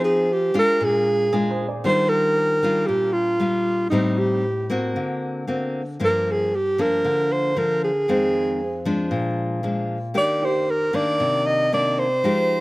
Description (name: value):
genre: bossa nova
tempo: 115 BPM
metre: 4/4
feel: straight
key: Eb major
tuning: A4 = 435 Hz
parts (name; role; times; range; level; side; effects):
- breathy alto saxophone; melody; 0.0-12.6 s; Eb4 to Eb5; -20 LUFS; right 1 dB; slapback echo
- nylon-string guitar; accompaniment; 0.0-12.6 s; F2 to Ab4; -23 LUFS; left 1 dB; none
- warm baby grand piano; accompaniment; 1.3-3.9, 10.4-11.4 s; G4 to D5; -32 LUFS; right 3 dB; slapback echo
room: light reverb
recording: recorded outdoors, with no room sound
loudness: -19 LUFS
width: side -20 dB against mid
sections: 0.0-1.8 A section; 1.8-12.6 B section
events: alto saxophone solo 0.0-1.8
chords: 0.0 Fm7; 0.8 Bb7; 1.8 Ebmaj9; 3.9 Am7b5; 5.0 D7b13; 6.0 Gm7; 8.1 Fm7; 9.1 Bb7; 10.2 Ebmaj7; 11.2 Cm9